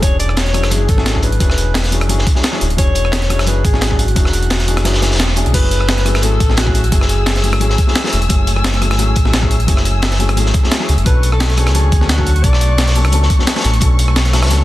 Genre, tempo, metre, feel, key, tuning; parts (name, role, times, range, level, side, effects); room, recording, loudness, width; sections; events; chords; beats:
liquid drum and bass; 174 BPM; 4/4; straight; F# minor; A4 = 440 Hz
breathy alto saxophone; melody; 0.0-8.1, 11.1-13.1 s; F#4 to D5; -23 LUFS; left 1 dB; tape echo
dark baby grand piano; accompaniment; 0.0-14.6 s; F#3 to A4; -22 LUFS; left 2 dB; digital delay
sub bass with octave; bass; 0.0-14.6 s; D1 to D2; -15 LUFS; equal
breakbeat sampler-style drum kit; drums; 0.0-14.6 s; crash cymbal, hi-hat, rim click, snare drum; -20 LUFS; equal; small room reverb
crunchy breakbeat drum kit; drums; 0.0-14.6 s; hi-hat, snare drum; -23 LUFS; equal; high-pass filter on hats, small room reverb, high-pass filter on snare, high-pass filter on room
electronic kick drum; drums; 0.0-13.9 s; -15 LUFS; equal; small room reverb
dark chamber string section; sustained chords; 5.5-14.6 s; A3 to E6; -25 LUFS; left 2 dB; sidechain pumping
small room reverb; dense, heavily limited modern master; -12 LUFS; side -16 dB against mid
0.0-5.5 A section; 5.5-14.6 A section
drop 0.0-5.5, 5.5-14.6; kick drops out 4.9-5.5; band accent 5.2
0.0 E13; 5.5 F#m9; 11.1 Bm9
| 0.03 0.37 0.71 1.06 | 1.40 1.75 2.09 2.44 | 2.78 3.13 3.47 3.82 | 4.16 4.51 4.85 5.20 | 5.54 5.89 6.23 6.58 | 6.92 7.27 7.61 7.96 | 8.30 8.64 8.99 9.34 | 9.68 10.03 10.37 10.71 | 11.06 11.40 11.75 12.09 | 12.44 12.78 13.13 13.47 | 13.82 14.16 14.51